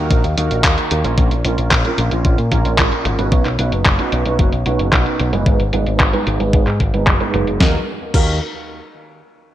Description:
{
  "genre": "italo disco",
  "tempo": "112 BPM",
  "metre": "4/4",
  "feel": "straight",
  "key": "Eb minor",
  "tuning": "A4 = 436 Hz",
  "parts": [
    { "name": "warm grand piano", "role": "stabs", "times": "0.0-8.3 s", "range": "Ab2 to Cb5", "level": "-21 LUFS", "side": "right 4 dB", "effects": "ensemble chorus, low-pass filter, digital delay" },
    { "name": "picked electric bass with an envelope filter", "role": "bass", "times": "0.0-8.4 s", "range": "F#1 to Bb2", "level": "-19 LUFS", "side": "left 1 dB", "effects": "tube saturation, digital delay" },
    { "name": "clean 12-bit digital drum machine", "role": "drums", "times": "0.1-8.2 s", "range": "crash cymbal, handclaps, hi-hat, snare drum", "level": "-20 LUFS", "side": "equal", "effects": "low-pass filter on hats, low-pass filter on snare, low-pass filter on cymbals, low-pass filter on room, gated reverb" },
    { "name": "electronic kick drum", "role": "drums", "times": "0.1-8.2 s", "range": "none", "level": "-16 LUFS", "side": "equal", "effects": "none" }
  ],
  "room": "light reverb, digital ambience",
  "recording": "bright 1980s-style digital production",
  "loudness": "-14 LUFS",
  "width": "side -12 dB against mid",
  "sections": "0.0-7.6 A section; 7.6-9.5 B section",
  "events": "filter sweep on grand piano 0.0-7.6",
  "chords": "0.0 Ebm; 1.2 Bbm; 3.3 Badd9; 5.5 Abm; 7.6 Ebm",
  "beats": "0.11 0.64 | 1.18 1.71 2.25 2.78 | 3.32 3.86 4.39 4.93 | 5.46 6.00 6.53 7.07 | 7.61 8.14"
}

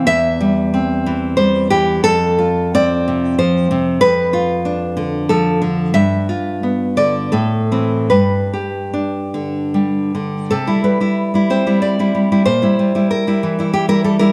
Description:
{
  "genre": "romantic piece for solo classical guitar",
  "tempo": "70-99 BPM",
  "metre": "3/4",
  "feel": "rubato",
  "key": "C major",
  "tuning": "A4 = 441 Hz",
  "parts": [
    { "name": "nylon-string guitar", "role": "solo", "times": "0.0-14.3 s", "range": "E2 to E5", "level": "-16 LUFS", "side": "equal", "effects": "none" }
  ],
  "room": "moderate recital hall reverb, RT60 1.6 s",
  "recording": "none",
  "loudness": "-16 LUFS",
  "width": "mono",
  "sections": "0.0-10.5 A section; 10.5-14.3 B section",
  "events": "none",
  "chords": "0.1 C/E; 2.0 F; 4.0 Dm/F; 6.0 G7; 7.3 Am; 8.1 G; 10.5 C; 12.5 C7/Bb",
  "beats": "| 0.08 0.74 1.38 | 2.03 2.73 3.38 | 4.02 4.66 5.30 | 5.96 6.63 7.34 | 8.12 8.95 9.74 | 10.52 11.19 11.84 | 12.49 13.13 13.76"
}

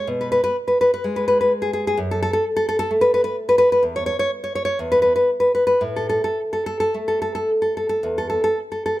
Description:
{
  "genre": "romantic piece for solo classical guitar",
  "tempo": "54-66 BPM",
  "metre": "4/4",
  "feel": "rubato",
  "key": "A major",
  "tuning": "A4 = 440 Hz",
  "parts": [
    { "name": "nylon-string guitar", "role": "solo", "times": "0.0-9.0 s", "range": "E2 to C#5", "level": "-18 LUFS", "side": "equal", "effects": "none" }
  ],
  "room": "light reverb",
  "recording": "close, detailed microphones",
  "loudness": "-18 LUFS",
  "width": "side -16 dB against mid",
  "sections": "0.0-9.0 A section",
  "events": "none",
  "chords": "0.0 E (rootless); 2.0 F#madd11; 3.8 N.C.; 5.8 A5",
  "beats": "0.08 1.02 | 1.97 2.89 3.81 4.78 | 5.84 6.96 8.04"
}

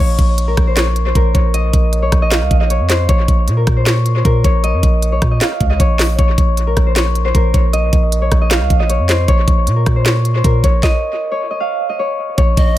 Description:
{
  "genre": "hip hop, trap",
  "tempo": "155 BPM",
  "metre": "4/4",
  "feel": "half-time",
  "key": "Bb minor",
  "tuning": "A4 = 440 Hz",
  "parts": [
    { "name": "Celtic harp", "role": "melody", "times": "0.0-12.8 s", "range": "Bb4 to F5", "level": "-18 LUFS", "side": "left 2 dB", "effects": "dub echo" },
    { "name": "long sustained 808-style bass", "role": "bass", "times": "0.0-12.8 s", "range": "Bb1 to Bb2", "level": "-15 LUFS", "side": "equal", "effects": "none" },
    { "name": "trap drum kit", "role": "drums", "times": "0.2-12.7 s", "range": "handclaps, hi-hat, kick drum, rim click, snare drum", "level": "-15 LUFS", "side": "equal", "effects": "dub echo" },
    { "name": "dark analog pad", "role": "sustained chords", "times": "12.4-12.8 s", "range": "F3 to Db4", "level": "-38 LUFS", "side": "right 1 dB", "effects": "none" },
    { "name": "bright polished pan flute", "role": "second line", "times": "12.6-12.8 s", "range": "Eb5", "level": "-24 LUFS", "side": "right 2 dB", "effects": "dub echo" }
  ],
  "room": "little or no reverb",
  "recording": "echo-heavy mix",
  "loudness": "-12 LUFS",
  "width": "side -14 dB against mid",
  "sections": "0.0-12.4 A section",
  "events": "stop 10.8-12.4",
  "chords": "0.0 Bbm",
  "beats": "0.38 0.77 1.15 | 1.54 1.93 2.31 2.70 | 3.09 3.48 3.86 4.25 | 4.64 5.03 5.41 5.80 | 6.19 6.57 6.96 7.35 | 7.73 8.12 8.51 8.90 | 9.28 9.67 10.06 10.44 | 10.83 11.22 11.61 11.99 | 12.38 12.77"
}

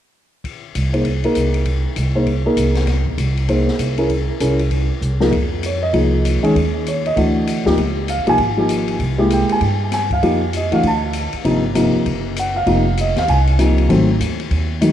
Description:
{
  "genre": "jazz piano trio",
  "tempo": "196 BPM",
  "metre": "4/4",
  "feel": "swing 62% on 8ths",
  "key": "unclear",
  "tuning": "A4 = 444 Hz",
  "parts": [
    { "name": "open jazz drum kit", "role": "drums", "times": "0.4-14.9 s", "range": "hi-hat, kick drum, ride cymbal, snare drum", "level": "-27 LUFS", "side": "left 4 dB", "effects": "none" },
    { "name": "upright bass", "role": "bass", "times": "0.8-14.9 s", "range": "F1 to G2", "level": "-19 LUFS", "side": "equal", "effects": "none" },
    { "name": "dark grand piano", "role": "melody", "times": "0.9-14.9 s", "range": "C3 to A5", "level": "-17 LUFS", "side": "equal", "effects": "tape echo" }
  ],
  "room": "moderate echo chamber reverb, RT60 1.9 s",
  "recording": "1960s-style stereo",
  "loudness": "-15 LUFS",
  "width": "side -10 dB against mid",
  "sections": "0.4-5.3 A section; 5.3-14.9 B section",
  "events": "drum fill 5.0-5.3",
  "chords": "0.4 Cm7; 5.3 Fm7; 6.5 Dbsus2/Eb; 7.2 Dadd9; 7.8 Db6; 9.0 C7b13; 10.2 Db69; 10.8 D5; 11.4 Eb69/G; 12.1 N.C.; 12.7 F5; 13.9 Ab7(no3)",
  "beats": "| 0.44 0.75 1.05 1.36 | 1.66 1.97 2.27 2.58 | 2.88 3.19 3.49 3.80 | 4.10 4.41 4.71 5.02 | 5.33 5.63 5.94 6.24 | 6.55 6.85 7.16 7.47 | 7.77 8.08 8.38 8.69 | 9.00 9.30 9.61 9.91 | 10.22 10.53 10.83 11.14 | 11.45 11.75 12.06 12.36 | 12.67 12.97 13.28 13.59 | 13.89 14.20 14.51 14.81"
}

